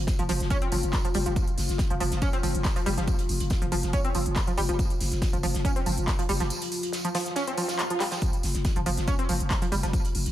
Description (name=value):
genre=driving peak-time techno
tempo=140 BPM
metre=4/4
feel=straight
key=unclear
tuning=A4 = 445 Hz
part: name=growling 808-style bass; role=bass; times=0.0-10.3 s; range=F1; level=-30 LUFS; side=equal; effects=overdrive, sidechain pumping, low-pass filter
part: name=deep dark ambient pad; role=drone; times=0.0-10.3 s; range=F3 to F4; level=-35 LUFS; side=left 2 dB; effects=chorus, built-in reverb, sidechain pumping
part: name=electronic kick drum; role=drums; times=0.1-10.0 s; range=none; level=-27 LUFS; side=equal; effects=overdrive
part: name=loose indie drum kit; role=drums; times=0.1-10.3 s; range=hi-hat, snare drum, tambourine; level=-38 LUFS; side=right 2 dB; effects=sidechain pumping on hats, high-pass filter on hats, high-pass filter on snare, sidechain pumping on perc, high-pass filter on perc, high-pass filter on room
part: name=techno drum kit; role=drums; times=0.1-10.3 s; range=handclaps, hi-hat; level=-34 LUFS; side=equal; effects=overdrive
part: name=tight sequenced synth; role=riff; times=0.2-9.9 s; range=F3 to Db4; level=-31 LUFS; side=right 1 dB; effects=chorus, sidechain pumping, tape echo
part: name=swell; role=sound effects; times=7.5-8.2 s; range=none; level=-35 LUFS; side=right 1 dB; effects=none
room=light reverb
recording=none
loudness=-24 LUFS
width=side -13 dB against mid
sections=0.0-10.3 A section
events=break 6.5-8.2; swell 7.5-8.2; drum fill 8.0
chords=0.0 F5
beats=0.08 0.51 0.93 | 1.36 1.79 2.22 2.65 | 3.08 3.50 3.93 4.36 | 4.79 5.22 5.65 6.08 | 6.50 6.93 7.36 7.79 | 8.22 8.65 9.08 9.51 | 9.93